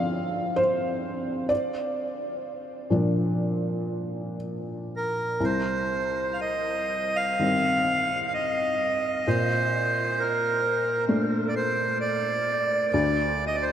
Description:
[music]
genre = celtic folk, Celtic slow air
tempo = 59-67 BPM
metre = 4/4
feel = rubato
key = C dorian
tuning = A4 = 440 Hz
[part]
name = felt-muted upright piano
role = accompaniment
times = 0.0-13.7 s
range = C2 to F5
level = -27 LUFS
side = left 1 dB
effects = none
[part]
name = accordion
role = melody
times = 5.0-13.7 s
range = Bb4 to F5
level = -24 LUFS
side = right 1 dB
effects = diffuse ambient delay
[sound]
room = wet huge ambient reverb, RT60 8.0 s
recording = dreamy mix soaked in reverb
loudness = -24 LUFS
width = side -9 dB against mid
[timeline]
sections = 0.0-5.4 A section; 5.4-13.7 B section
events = felt piano solo 0.0-5.4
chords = 0.0 Dm7; 1.5 Bb; 5.4 Cm; 9.3 Bbmaj7; 12.9 D7(no3)

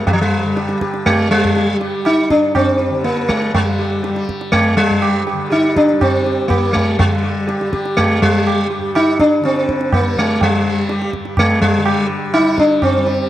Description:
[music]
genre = indian classical, Hindustani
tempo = 122 BPM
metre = 7/4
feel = straight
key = G raga bhairavi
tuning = A4 = 440 Hz
[part]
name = sitar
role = melody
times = 0.0-13.3 s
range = F3 to G4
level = -14 LUFS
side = equal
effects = tape echo
[part]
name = tanpura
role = drone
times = 0.0-13.3 s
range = G2 to G3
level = -26 LUFS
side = left 1 dB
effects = none
[part]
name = tabla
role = percussion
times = 0.1-13.2 s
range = none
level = -20 LUFS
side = right 2 dB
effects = none
[sound]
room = small room ambience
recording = dry, close 1970s-style studio recording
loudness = -13 LUFS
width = side -13 dB against mid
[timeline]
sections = 0.0-7.0 A section; 7.0-13.3 B section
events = speeding up 0.0-13.3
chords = none

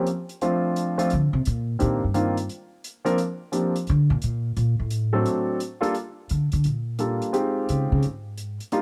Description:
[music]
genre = jazz piano trio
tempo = 174 BPM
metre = 4/4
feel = swing 65% on 8ths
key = unclear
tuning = A4 = 440 Hz
[part]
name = warm grand piano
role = melody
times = 0.0-8.8 s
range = Eb3 to Bb4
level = -26 LUFS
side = equal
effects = none
[part]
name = hi-hat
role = drums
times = 0.1-8.8 s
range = none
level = -43 LUFS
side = equal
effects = none
[part]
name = upright bass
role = bass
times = 1.1-8.6 s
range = G2 to D3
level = -25 LUFS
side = equal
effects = none
[sound]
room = light reverb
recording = dark, warm production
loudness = -24 LUFS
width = mono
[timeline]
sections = 0.0-6.0 A section; 6.0-8.8 A section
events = upright bass solo 0.0-8.8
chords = 0.4 Dm7; 1.8 Cm7; 2.5 N.C.; 3.2 Bb; 4.6 N.C.; 5.3 D7; 6.0 Gm9; 7.3 Fm9; 8.0 N.C.

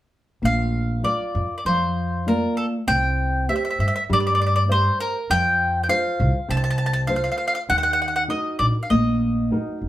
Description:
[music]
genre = italian folk, Italian serenade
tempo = 99 BPM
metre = 4/4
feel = straight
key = Bb major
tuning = A4 = 440 Hz
[part]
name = nylon-string guitar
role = accompaniment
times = 0.4-9.9 s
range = C3 to E5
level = -25 LUFS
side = equal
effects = none
[part]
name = upright bass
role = bass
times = 0.4-9.9 s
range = Gb1 to G2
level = -24 LUFS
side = equal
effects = none
[part]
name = mandolin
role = melody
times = 0.5-9.8 s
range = A4 to A5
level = -22 LUFS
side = left 1 dB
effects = none
[sound]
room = wet studio reverb, RT60 0.5 s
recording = band playing live in one room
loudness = -19 LUFS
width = side -14 dB against mid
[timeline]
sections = 0.4-9.9 A section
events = none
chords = 0.4 Bb; 2.9 C; 5.3 F; 7.7 Ebm

